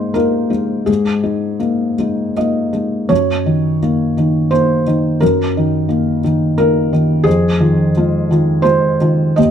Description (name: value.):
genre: neoclassical minimalist piano.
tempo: 78-88 BPM.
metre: 3/4.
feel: rubato.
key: Eb dorian.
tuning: A4 = 440 Hz.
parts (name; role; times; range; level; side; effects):
felt-muted upright piano; solo; 0.0-9.5 s; Eb2 to Eb5; -13 LUFS; equal; none.
room: moderate stone room reverb, RT60 1.0 s.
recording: band playing live in one room.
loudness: -13 LUFS.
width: side -8 dB against mid.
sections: 0.0-9.5 A section.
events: none.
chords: 0.0 Abadd9; 3.1 Ebm/Gb; 7.3 Fm7.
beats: 0.16 | 0.88 1.61 2.37 | 3.10 3.82 4.51 | 5.21 5.89 6.58 | 7.26 7.95 8.65 | 9.37.